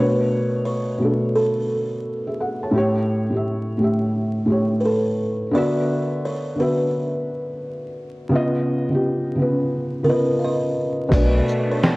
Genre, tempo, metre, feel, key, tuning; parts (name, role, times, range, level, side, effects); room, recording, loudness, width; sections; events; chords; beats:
lo-fi hip hop; 86 BPM; 4/4; swing 66% on 16ths; A4 = 439 Hz
buzzing kalimba; melody; 0.0-12.0 s; A4 to E#5; -24 LUFS; equal
felt-muted upright piano; accompaniment; 0.0-12.0 s; A2 to A5; -20 LUFS; equal; cassette tape
rich studio string section; sustained chords; 11.1-12.0 s; A3 to D4; -28 LUFS; right 1 dB
sub bass with octave; bass; 11.1-11.4 s; B1; -19 LUFS; equal
lo-fi sampler-style drum kit; drums; 11.1-12.0 s; crash cymbal, hi-hat, kick drum, shaker, snare drum; -20 LUFS; equal; vintage 12-bit sampler grit
moderate spring reverb, RT60 2.3 s; worn, warbling old tape, cassette tape, vinyl crackle, warbly pitch drift; -19 LUFS; side -22 dB against mid
0.0-11.1 A section
0.0 Bm9; 2.7 A7; 5.5 D69; 8.3 C#9; 11.1 Bm9
0.65 1.35 2.05 | 2.75 3.44 4.14 4.84 | 5.54 6.23 6.93 7.63 | 8.33 9.03 9.72 10.42 | 11.12 11.81